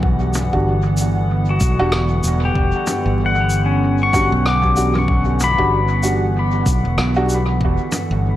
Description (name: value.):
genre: ambient dub.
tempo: 95 BPM.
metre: 4/4.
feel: swing 59% on 16ths.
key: E dorian.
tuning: A4 = 442 Hz.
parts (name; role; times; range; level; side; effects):
warbly tape-like pad; sustained chords; 0.0-8.4 s; D3 to F#5; -23 LUFS; right 1 dB; chorus, built-in reverb.
fingered electric bass; bass; 0.0-8.4 s; E1 to B1; -18 LUFS; equal; none.
electronic kick drum; drums; 0.0-7.8 s; none; -21 LUFS; equal; none.
vintage drum kit; drums; 0.3-8.1 s; rim click, shaker, toms; -26 LUFS; equal; dub echo.
dark upright piano; stabs; 0.5-7.3 s; G3 to F#4; -24 LUFS; right 1 dB; dub echo.
pedal steel guitar; arpeggios; 1.5-8.4 s; C#4 to D6; -21 LUFS; left 4 dB; dub echo.
room: moderate echo chamber reverb, RT60 1.4 s, studio reverb.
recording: vinyl crackle.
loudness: -15 LUFS.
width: side -13 dB against mid.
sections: 0.0-8.4 A section.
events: none.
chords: 0.0 Em9.